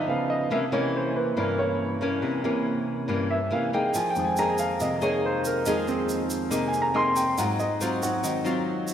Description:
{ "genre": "bossa nova", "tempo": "140 BPM", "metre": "4/4", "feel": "straight", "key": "F minor", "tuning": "A4 = 440 Hz", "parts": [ { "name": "nylon-string guitar", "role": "accompaniment", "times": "0.0-8.9 s", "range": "G2 to Ab4", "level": "-27 LUFS", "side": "left 2 dB", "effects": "wide subtle chorus" }, { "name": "warm grand piano", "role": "accompaniment", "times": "0.0-8.9 s", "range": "F2 to C6", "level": "-26 LUFS", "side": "right 2 dB", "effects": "none" }, { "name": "egg shaker", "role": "percussion", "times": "3.9-8.9 s", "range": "none", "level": "-37 LUFS", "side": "right 5 dB", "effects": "none" } ], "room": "wet lush hall reverb, RT60 2.6 s", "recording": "dreamy mix soaked in reverb", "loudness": "-23 LUFS", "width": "side -9 dB against mid", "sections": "0.0-8.9 A section", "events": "grand piano solo 0.0-8.9", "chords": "0.1 Db9; 0.5 C7b9; 3.9 Fm7; 7.4 Ab6", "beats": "0.08 | 0.51 0.94 1.37 1.80 | 2.23 2.66 3.09 3.52 | 3.95 4.38 4.80 5.23 | 5.66 6.09 6.52 6.95 | 7.38 7.80 8.23 8.66" }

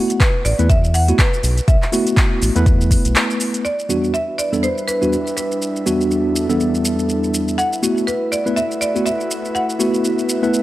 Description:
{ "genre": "deep house", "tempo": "122 BPM", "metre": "4/4", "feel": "swing 58% on 16ths", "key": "E minor", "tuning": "A4 = 440 Hz", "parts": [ { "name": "marimba with hard mallets", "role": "melody", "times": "0.0-10.6 s", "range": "B4 to F#5", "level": "-22 LUFS", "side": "equal", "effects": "tape echo" }, { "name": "tine electric piano", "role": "stabs", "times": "0.0-10.6 s", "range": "E2 to B4", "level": "-19 LUFS", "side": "equal", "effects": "medium stereo tremolo, sidechain pumping, low-pass filter, tape echo" }, { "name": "deep house drum kit", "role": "drums", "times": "0.1-10.6 s", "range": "handclaps, hi-hat, shaker", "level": "-22 LUFS", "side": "equal", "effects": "none" }, { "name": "electronic kick drum", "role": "drums", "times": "0.2-3.0 s", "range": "none", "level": "-15 LUFS", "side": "equal", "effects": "none" }, { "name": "round analog bass", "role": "bass", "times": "0.4-3.2 s", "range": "A1 to E2", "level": "-17 LUFS", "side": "equal", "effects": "sidechain pumping" }, { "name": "airy breathy pad", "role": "sustained chords", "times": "4.1-10.6 s", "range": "G3 to E5", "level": "-24 LUFS", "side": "equal", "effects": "chorus, sidechain pumping" } ], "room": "light reverb, digital ambience", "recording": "none", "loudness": "-15 LUFS", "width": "side -15 dB against mid", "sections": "0.0-3.6 A section; 3.6-10.6 B section", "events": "filter sweep on tine electric piano 0.0-3.6; break 3.2-3.6", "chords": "0.0 B7sus4; 3.6 Em7; 7.6 B7sus4", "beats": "0.20 0.69 1.19 | 1.68 2.17 2.66 3.15 | 3.65 4.14 4.63 5.12 | 5.61 6.11 6.60 7.09 | 7.58 8.07 8.56 9.06 | 9.55 10.04 10.53" }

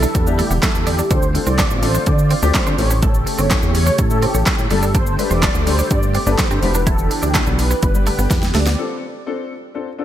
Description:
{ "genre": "dance-pop", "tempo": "125 BPM", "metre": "4/4", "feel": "straight", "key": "D dorian", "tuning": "A4 = 440 Hz", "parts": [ { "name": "filtered supersaw swell", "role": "melody", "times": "0.0-8.6 s", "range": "G4 to D5", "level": "-24 LUFS", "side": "right 1 dB", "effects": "ensemble chorus, sidechain pumping, digital delay" }, { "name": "lush unison pad", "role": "sustained chords", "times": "0.0-8.8 s", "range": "C#3 to G4", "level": "-27 LUFS", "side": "right 1 dB", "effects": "chorus, phaser, sidechain pumping" }, { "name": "twelve-string electric guitar", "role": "riff", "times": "0.0-8.7 s", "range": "A3 to E4", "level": "-28 LUFS", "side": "right 6 dB", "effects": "lush chorus" }, { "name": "chorused synth bass", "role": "bass", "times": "0.0-8.8 s", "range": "E1 to D3", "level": "-18 LUFS", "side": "equal", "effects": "sidechain pumping" }, { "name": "deep house drum kit", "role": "drums", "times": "0.0-8.8 s", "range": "handclaps, hi-hat, kick drum, shaker, snare drum", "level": "-18 LUFS", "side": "equal", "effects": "overdrive, gated reverb" }, { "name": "warm baby grand piano", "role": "accompaniment", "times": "0.1-10.0 s", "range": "G3 to B4", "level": "-26 LUFS", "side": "left 6 dB", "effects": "lush chorus, sidechain pumping" } ], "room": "digital ambience", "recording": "bright 1980s-style digital production", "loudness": "-14 LUFS", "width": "side -11 dB against mid", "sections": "0.0-8.8 A section; 8.8-10.0 B section", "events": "drop 0.0-8.8; drum fill 8.3-8.8", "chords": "0.0 Em7; 1.1 Dm7; 2.8 A7; 4.7 Gsus2; 6.6 Em7; 7.8 G; 8.8 Dm7", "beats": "0.15 0.63 | 1.11 1.59 2.07 2.55 | 3.03 3.51 3.99 4.47 | 4.95 5.43 5.91 6.39 | 6.87 7.35 7.83 8.31 | 8.79 9.27 9.75" }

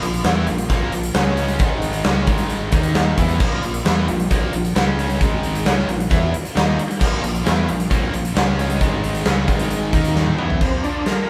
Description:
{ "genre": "classic rock", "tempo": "133 BPM", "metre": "4/4", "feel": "straight", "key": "unclear", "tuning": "A4 = 441 Hz", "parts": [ { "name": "string machine, violas", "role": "sustained chords", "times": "0.0-10.4 s", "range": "Db4 to Eb5", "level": "-36 LUFS", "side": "equal", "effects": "none" }, { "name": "distorted electric guitar", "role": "riff", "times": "0.0-10.6 s", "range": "Ab2 to E4", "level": "-29 LUFS", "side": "equal", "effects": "overdrive" }, { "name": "tight distorted guitar", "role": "riff", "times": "0.0-11.3 s", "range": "Ab2 to E4", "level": "-30 LUFS", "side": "equal", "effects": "none" }, { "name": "tight distorted guitar", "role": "riff", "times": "0.0-11.3 s", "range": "Ab2 to E4", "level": "-31 LUFS", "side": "equal", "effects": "distortion" }, { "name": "growling fingered electric bass", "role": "bass", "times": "0.0-10.8 s", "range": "Ab1 to E2", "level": "-26 LUFS", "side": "equal", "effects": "overdrive" }, { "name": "big rock drum kit", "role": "drums", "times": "0.0-11.2 s", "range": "crash cymbal, hi-hat, kick drum, snare drum, toms", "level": "-22 LUFS", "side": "equal", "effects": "none" }, { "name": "overdriven tonewheel organ", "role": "melody", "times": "10.6-11.3 s", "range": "C4 to Bb4", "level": "-26 LUFS", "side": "equal", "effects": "slow rotary speaker, chorus vibrato" } ], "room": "moderate studio reverb, RT60 0.8 s", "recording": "band playing live in one room", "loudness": "-19 LUFS", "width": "mono", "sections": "0.0-10.6 A section", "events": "drum fill 10.2-10.6", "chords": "0.0 Bb; 1.2 Db5; 1.6 Ab5; 2.1 Db5; 2.3 Ab5; 2.7 Eb5; 3.2 Bb; 4.8 Db5; 5.2 Ab5; 5.7 Bb; 8.4 Db5; 8.8 Ab5; 9.3 Db5; 9.5 Ab5; 9.9 Eb5; 10.4 E5; 10.6 Bb", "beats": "0.25 0.70 1.15 | 1.60 2.06 2.51 2.96 | 3.41 3.86 4.31 4.76 | 5.21 5.66 6.11 6.56 | 7.01 7.46 7.91 8.36 | 8.81 9.26 9.71 10.16 | 10.62 11.07" }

